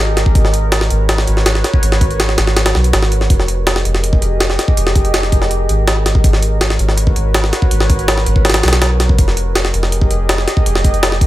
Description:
drum and bass, jungle; 163 BPM; 4/4; straight; A4 = 438 Hz
warbly tape-like pad; sustained chords; 0.0-11.3 s; Gb4 to Eb5; -21 LUFS; right 1 dB; chorus, built-in reverb
soft dub sub bass; bass; 0.0-11.3 s; F1 to Cb2; -15 LUFS; equal; tube saturation
jungle sampler-style drum kit; drums; 0.2-11.3 s; hi-hat, kick drum, snare drum; -14 LUFS; equal; studio reverb
little or no reverb; -11 LUFS; side -15 dB against mid
0.0-11.3 A section
0.4 Abm11; 3.3 Fm11; 6.2 Abm11; 9.2 Fm11
| 0.35 0.72 1.09 1.46 | 1.83 2.19 2.56 2.93 | 3.30 3.67 4.03 4.40 | 4.77 5.14 5.51 5.88 | 6.24 6.61 6.98 7.35 | 7.71 8.08 8.45 8.82 | 9.19 9.56 9.92 10.29 | 10.66 11.03

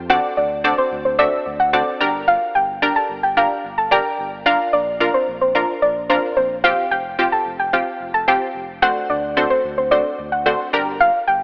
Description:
dance-pop; 110 BPM; 4/4; straight; A4 = 440 Hz
sub bass with octave; bass; 0.0-11.4 s; F1 to F2; -35 LUFS; equal
soft round pluck; melody; 0.1-11.4 s; C5 to A5; -17 LUFS; equal; chorus, digital delay
punchy chord stab; accompaniment; 0.1-11.4 s; A3 to E5; -20 LUFS; equal; chorus
moderate lush hall reverb, RT60 2.7 s; AM radio sound; -15 LUFS; side -33 dB against mid
0.0-11.4 A section
0.1 D7; 2.0 Gm; 4.5 Bb; 6.6 Fsus2; 8.8 D7; 10.7 Gm
| 0.10 0.64 1.19 1.73 | 2.28 2.83 3.37 3.92 | 4.46 5.01 5.55 6.10 | 6.64 7.19 7.73 8.28 | 8.82 9.37 9.92 10.46 | 11.01

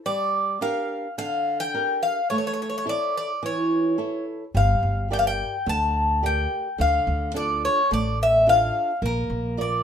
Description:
greek folk, Greek bouzouki band; 107 BPM; 4/4; straight; A4 = 440 Hz
Greek bouzouki; melody; 0.1-9.8 s; Bb4 to A5; -23 LUFS; left 1 dB
flamenco guitar; accompaniment; 0.1-9.8 s; D3 to D5; -29 LUFS; right 3 dB
upright bass; bass; 4.5-9.8 s; G1 to D2; -25 LUFS; equal
moderate small room ambience, RT60 0.5 s; minimal, uncompressed stereo recording; -21 LUFS; side -8 dB against mid
0.0-9.8 A section
0.1 Gm; 2.3 A; 4.5 Gm; 6.8 Dm; 9.0 Bb
| 0.06 0.62 1.18 1.74 | 2.30 2.86 3.42 3.98 | 4.54 5.10 5.66 6.22 | 6.78 7.34 7.90 8.46 | 9.02 9.58

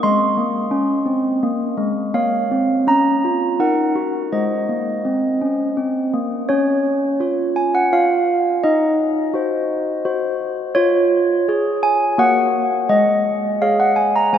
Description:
classical, tune for handbells; 84 BPM; 3/4; straight; Db major; A4 = 440 Hz
handbells; solo; 0.0-14.4 s; Ab3 to C6; -16 LUFS; equal
wet cathedral reverb, RT60 4.5 s; -16 LUFS; side -9 dB against mid
0.0-6.5 A section; 6.5-14.4 B section
0.0 Ab; 2.1 Bbm; 3.6 Ebm; 4.3 Ab; 6.5 Db; 8.6 Cdim/Eb; 10.8 Db/F; 12.2 Gb/Bb; 12.9 Absus4
| 0.03 0.73 1.43 | 2.14 2.87 3.59 | 4.32 5.05 5.78 | 6.50 7.21 7.92 | 8.64 9.35 10.05 | 10.76 11.47 12.18 | 12.89 13.62 14.34

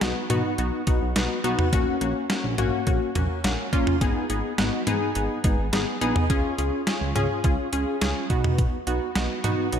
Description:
synth-pop; 105 BPM; 4/4; straight; A4 = 439 Hz
funky polysynth comp; accompaniment; 0.0-9.8 s; A#3 to G#4; -25 LUFS; left 1 dB; chorus
chorused synth bass; bass; 0.0-9.8 s; G#1 to B2; -28 LUFS; equal
detuned 8-bit digital drum machine; drums; 0.0-9.8 s; hi-hat, kick drum, snare drum, toms; -25 LUFS; equal; overdrive
moderate lush hall reverb, RT60 1.9 s, digital ambience; big arena sound; -22 LUFS; side -8 dB against mid
0.0-9.8 A section
0.0 B; 1.7 F#/A#; 4.0 G#m; 6.3 C#; 8.3 B
0.01 0.58 1.16 | 1.73 2.30 2.87 3.44 | 4.01 4.58 5.16 5.73 | 6.30 6.87 7.44 8.01 | 8.59 9.16 9.73

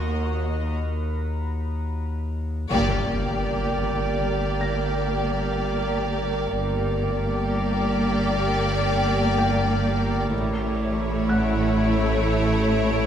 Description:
cinematic, suspense film score; 63 BPM; 4/4; straight; G harmonic minor; A4 = 438 Hz
rich studio violin section; melody; 0.0-13.1 s; C#5 to Eb5; -31 LUFS; left 2 dB
rich studio violin section; second line; 0.0-13.1 s; E4 to G4; -30 LUFS; left 2 dB
rich studio viola section; accompaniment; 0.0-13.1 s; A3 to Bb3; -28 LUFS; equal
drifting glass-harmonics texture; sustained chords; 0.0-13.1 s; E4 to Eb5; -29 LUFS; right 2 dB; chorus, built-in reverb
bright studio cello section; bass; 0.0-13.1 s; Eb2 to A2; -30 LUFS; right 2 dB
saturated sub bass; drone; 0.0-13.1 s; G1 to Eb2; -28 LUFS; left 1 dB
rich studio violin section; texture; 0.0-2.2, 10.3-13.1 s; C#5 to D7; -38 LUFS; left 4 dB
rich studio double bass section; bass; 2.7-13.1 s; G1 to A1; -30 LUFS; right 2 dB
impact; sound effects; 2.7-6.5 s; -33 LUFS; left 1 dB
felt-muted upright piano; texture; 4.6-13.1 s; F#5 to Bb6; -34 LUFS; left 2 dB
wet concert hall reverb, RT60 2.5 s; -21 LUFS; side -9 dB against mid
0.0-2.7 A section; 2.7-13.1 B section
break 0.8-2.7; band accent 2.7-3.7; impact 2.7-6.5
0.0 Ebm; 2.7 Gm; 10.3 A
0.80 1.75 | 2.71 3.66 4.61 5.57 | 6.52 7.47 8.42 9.37 | 10.33 11.28 12.23

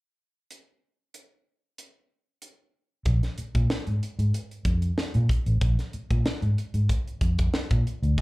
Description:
funk; 94 BPM; 4/4; straight; A4 = 440 Hz
crisp fusion drum kit; drums; 0.5-8.2 s; hi-hat, kick drum, snare drum; -27 LUFS; equal
vintage muted fingered electric bass; bass; 3.1-8.2 s; A1 to Bb2; -24 LUFS; equal
little or no reverb; live gig heard through the venue's PA, club reverb; -23 LUFS; side -21 dB against mid
0.5-3.1 A section; 3.1-8.2 B section
| 0.50 1.14 1.78 2.42 | 3.06 3.70 4.34 4.98 | 5.62 6.26 6.90 7.54 | 8.18

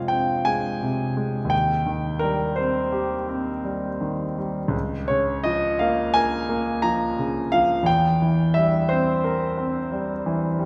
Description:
classical, romantic nocturne for solo piano; 57 BPM (dotted quarters); 9/8; rubato; A4 = 437 Hz
clear concert grand piano; solo; 0.0-10.7 s; Db2 to Bb5; -23 LUFS; equal
wet concert hall reverb, RT60 2.0 s; recorded in a church or concert hall; -23 LUFS; mono
0.0-10.7 A section
0.0 Fm; 1.5 Cm/Eb; 4.7 Bbm/Db; 7.9 C7/E
0.48 | 1.52 2.59 3.66 | 4.74 5.79 6.83 | 7.87 8.89 9.92

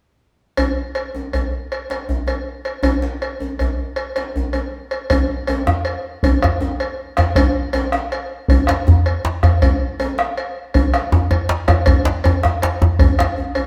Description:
west african traditional, West African drum ensemble; 106 BPM (dotted quarters); 12/8; straight
cowbell; percussion; 0.6-13.7 s; -26 LUFS; equal
djembe; percussion; 0.6-13.7 s; -24 LUFS; equal
bombo; percussion; 5.1-13.4 s; -22 LUFS; equal
djembe; percussion; 5.7-13.4 s; -18 LUFS; equal
wet stone room reverb, RT60 1.4 s; band playing live in one room; -19 LUFS; mono
0.6-5.1 A section; 5.1-13.7 B section
drum fill 13.4
| 0.58 1.14 1.71 2.27 | 2.84 3.41 3.97 4.54 | 5.10 5.67 6.23 6.80 | 7.36 7.93 8.49 9.05 | 9.62 10.18 10.74 11.31 | 11.87 12.43 12.99 13.55

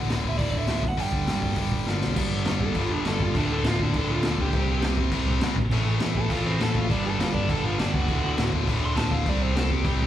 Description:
punk rock; 203 BPM; 4/4; straight; A4 = 440 Hz
crunchy overdriven guitar; melody; 0.0-10.1 s; C4 to C6; -31 LUFS; right 2 dB; slapback echo
sludgy distorted guitar; riff; 0.0-10.1 s; D2 to C4; -31 LUFS; right 9 dB; overdrive, slapback echo
tight distorted guitar; riff; 0.0-10.1 s; D2 to C4; -30 LUFS; left 11 dB; distortion
overdriven picked electric bass; bass; 0.0-10.1 s; D1 to D2; -27 LUFS; equal
raw garage drum kit; drums; 0.1-9.9 s; crash cymbal, hi-hat, kick drum, snare drum; -28 LUFS; equal
little or no reverb; live gig heard through the venue's PA, club reverb; -22 LUFS; side -11 dB against mid
0.0-2.2 A section; 2.2-10.1 B section
drum fill 1.9; overdriven electric guitar solo 2.2-10.1
0.0 D5; 0.8 G5; 3.4 D5; 4.5 C5; 5.6 A5; 6.9 G5; 8.1 D; 9.3 C5
0.10 0.39 0.69 | 0.99 1.28 1.58 1.88 | 2.17 2.47 2.77 3.06 | 3.36 3.65 3.95 4.25 | 4.54 4.84 5.13 5.43 | 5.72 6.02 6.32 6.61 | 6.91 7.20 7.50 7.79 | 8.09 8.39 8.68 8.98 | 9.27 9.57 9.86

